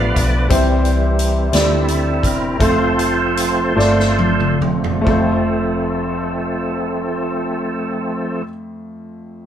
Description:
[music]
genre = slow gospel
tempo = 43-60 BPM (dotted quarters)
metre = 6/8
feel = straight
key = F major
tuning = A4 = 440 Hz
[part]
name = clear upright piano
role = accompaniment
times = 0.0-9.5 s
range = F2 to D5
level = -20 LUFS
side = equal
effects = none
[part]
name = bright tonewheel organ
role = sustained chords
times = 0.0-8.4 s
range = E3 to F5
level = -20 LUFS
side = right 1 dB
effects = fast rotary speaker, chorus vibrato
[part]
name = hollow-body short-scale fingered electric bass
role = bass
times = 0.0-8.4 s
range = E1 to D2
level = -20 LUFS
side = equal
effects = none
[part]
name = swinging big-band drum kit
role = drums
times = 0.2-5.3 s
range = hi-hat, kick drum, snare drum, toms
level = -21 LUFS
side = equal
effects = none
[sound]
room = light reverb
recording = band playing live in one room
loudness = -15 LUFS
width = side -10 dB against mid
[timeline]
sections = 0.0-5.1 A section; 5.1-9.5 B section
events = tonewheel organ solo 0.0-5.1; slowing down 0.5-5.1; drum fill 3.8-5.1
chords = 0.0 G7; 0.5 C; 2.6 F

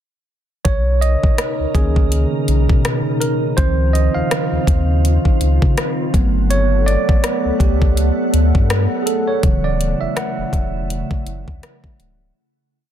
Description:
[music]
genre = contemporary R&B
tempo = 82 BPM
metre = 4/4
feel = swing 58% on 16ths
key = unclear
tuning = A4 = 441 Hz
[part]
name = bright tine electric piano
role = accompaniment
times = 0.6-12.4 s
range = C#3 to F#5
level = -21 LUFS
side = right 4 dB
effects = medium stereo tremolo
[part]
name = glassy FM pad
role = sustained chords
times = 0.9-12.3 s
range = B2 to F#5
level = -22 LUFS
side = left 1 dB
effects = ensemble chorus, built-in reverb
[part]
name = warm sub bass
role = bass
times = 0.7-12.3 s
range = C#1 to C#3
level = -17 LUFS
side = equal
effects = none
[part]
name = smooth R&B drum kit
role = drums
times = 0.7-12.2 s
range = hi-hat, kick drum, rim click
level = -17 LUFS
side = equal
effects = none
[sound]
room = digital ambience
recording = dense, heavily limited modern master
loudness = -14 LUFS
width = side -10 dB against mid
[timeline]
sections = 0.7-12.4 verse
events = tine electric piano solo 0.7-12.4; fade-out 9.4-12.4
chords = 0.7 Bmaj9; 3.6 C#maj9; 6.1 Gmaj9; 9.4 Dmaj9

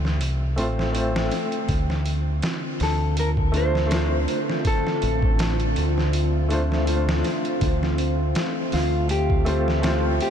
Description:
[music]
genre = trip hop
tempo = 81 BPM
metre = 4/4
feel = swing 55% on 16ths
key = D minor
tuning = A4 = 440 Hz
[part]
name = felt-muted upright piano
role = accompaniment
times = 0.0-10.3 s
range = A3 to C5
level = -28 LUFS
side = equal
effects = tremolo, vintage 12-bit sampler grit, tape echo
[part]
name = deep dub fingered electric bass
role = bass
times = 0.0-10.2 s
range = A1 to D2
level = -23 LUFS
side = equal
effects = none
[part]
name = trip hop sampler-style drum kit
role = drums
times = 0.1-10.3 s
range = hi-hat, kick drum, snare drum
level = -27 LUFS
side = equal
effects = vintage 12-bit sampler grit
[part]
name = warbly tape-like pad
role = sustained chords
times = 2.1-10.3 s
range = D3 to F4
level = -28 LUFS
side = left 1 dB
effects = chorus, built-in reverb, vintage 12-bit sampler grit
[part]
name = mellow electric guitar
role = melody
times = 2.8-10.3 s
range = F4 to C5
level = -28 LUFS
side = left 1 dB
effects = lush chorus, tape echo
[sound]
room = moderate huge ambient reverb, RT60 5.2 s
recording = dreamy mix soaked in reverb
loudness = -20 LUFS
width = side -8 dB against mid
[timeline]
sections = 0.0-10.3 A section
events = none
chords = 0.0 Dm7

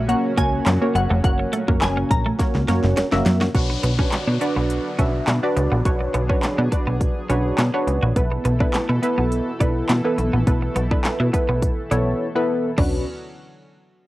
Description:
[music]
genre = dance-pop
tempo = 104 BPM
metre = 4/4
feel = straight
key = B dorian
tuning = A4 = 440 Hz
[part]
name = glassy wavetable pluck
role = melody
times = 0.0-3.2 s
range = F#5 to A#5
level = -26 LUFS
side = left 1 dB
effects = chorus, cassette tape, tape echo, plate reverb
[part]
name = chorused pulse-width pad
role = sustained chords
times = 0.0-13.0 s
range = A#2 to A4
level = -33 LUFS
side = left 1 dB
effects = sidechain pumping, cassette tape, plate reverb
[part]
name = twelve-string electric guitar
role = riff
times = 0.0-13.0 s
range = A3 to F#4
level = -27 LUFS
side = right 2 dB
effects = wide subtle chorus, cassette tape
[part]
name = plucky analog bass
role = bass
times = 0.0-13.0 s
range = E#1 to B2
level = -21 LUFS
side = equal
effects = sidechain pumping
[part]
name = funky polysynth comp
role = accompaniment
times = 0.1-13.0 s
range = A#3 to E5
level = -23 LUFS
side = equal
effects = chorus, sidechain pumping, cassette tape, plate reverb
[part]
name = pop drum kit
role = drums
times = 0.1-12.9 s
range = crash cymbal, handclaps, hi-hat, kick drum, snare drum, toms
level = -22 LUFS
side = equal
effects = overdrive
[part]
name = downlifter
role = sound effects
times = 3.5-8.2 s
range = none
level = -35 LUFS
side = left 3 dB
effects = none
[sound]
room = light reverb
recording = home recording on cassette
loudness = -18 LUFS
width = side -17 dB against mid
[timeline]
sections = 0.0-3.5 A section; 3.5-12.8 B section; 12.8-14.1 C section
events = drum fill 2.4-3.5; silent gap 12.2-12.8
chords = 0.0 F#; 3.5 Bmadd9; 8.2 Esus4; 12.8 Bmadd9

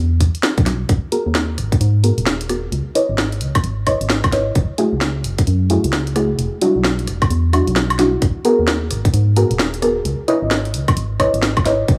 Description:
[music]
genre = UK garage, two-step garage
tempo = 131 BPM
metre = 4/4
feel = swing 62% on 16ths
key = unclear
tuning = A4 = 440 Hz
[part]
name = organ-like FM bass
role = bass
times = 0.0-12.0 s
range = D#1 to G#2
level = -21 LUFS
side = equal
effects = none
[part]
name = electronic kick drum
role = drums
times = 0.2-12.0 s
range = none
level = -19 LUFS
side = equal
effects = none
[part]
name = garage drum kit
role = drums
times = 0.2-12.0 s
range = hi-hat, rim click, snare drum, woodblock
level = -23 LUFS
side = equal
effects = none
[part]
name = deep mellow chord stab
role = stabs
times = 0.7-11.8 s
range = G3 to D#5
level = -22 LUFS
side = equal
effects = chorus, tape echo
[sound]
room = light reverb, digital ambience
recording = none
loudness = -17 LUFS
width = mono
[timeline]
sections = 0.0-12.0 A section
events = filter sweep on synth stab 0.0-12.0; kick drops out 7.3-8.2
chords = 0.0 Em9; 0.9 G#m9; 2.7 C#m9; 4.6 F#m9; 6.4 Em9; 8.2 G#m9; 10.1 C#m9

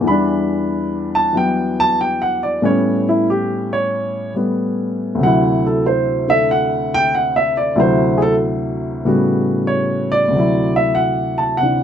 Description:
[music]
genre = solo jazz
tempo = 93 BPM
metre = 4/4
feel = swing 69% on 8ths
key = D mixolydian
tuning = A4 = 440 Hz
[part]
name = warm upright piano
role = solo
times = 0.0-11.8 s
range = D2 to B5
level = -15 LUFS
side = equal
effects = none
[sound]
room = light reverb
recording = none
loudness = -15 LUFS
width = side -8 dB against mid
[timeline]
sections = 0.0-10.3 A section; 10.3-11.8 B section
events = upright piano solo 0.0-10.3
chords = 0.1 Em7; 2.6 A9; 5.2 D9; 9.0 A13; 10.3 D9

